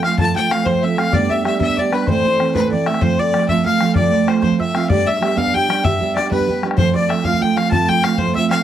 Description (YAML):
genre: celtic folk, Celtic jig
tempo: 128 BPM (dotted quarters)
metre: 6/8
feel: straight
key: unclear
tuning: A4 = 440 Hz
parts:
  - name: clear fiddle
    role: melody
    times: 0.0-8.6 s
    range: B4 to A5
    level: -20 LUFS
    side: left 4 dB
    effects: none
  - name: accordion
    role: second line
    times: 0.0-8.6 s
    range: B4 to A5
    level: -25 LUFS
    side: left 4 dB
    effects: none
  - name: mandolin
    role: second line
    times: 0.0-8.6 s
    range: B4 to A5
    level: -28 LUFS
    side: equal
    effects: none
  - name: picked steel-string acoustic guitar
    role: accompaniment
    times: 0.0-8.6 s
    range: A2 to G4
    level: -18 LUFS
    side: right 6 dB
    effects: none
  - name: bodhran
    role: percussion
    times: 0.0-8.6 s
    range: none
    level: -22 LUFS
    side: left 4 dB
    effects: none
room: little or no reverb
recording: dry, close 1970s-style studio recording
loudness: -14 LUFS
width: side -10 dB against mid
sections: 0.0-3.0 A section; 3.0-8.6 A section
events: none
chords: 0.0 F; 1.1 G; 2.1 Am; 3.0 F; 4.9 G; 6.8 F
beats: | 0.19 0.66 | 1.14 1.61 | 2.08 2.55 | 3.02 3.50 | 3.97 4.44 | 4.91 5.38 | 5.84 6.31 | 6.78 7.25 | 7.72 8.19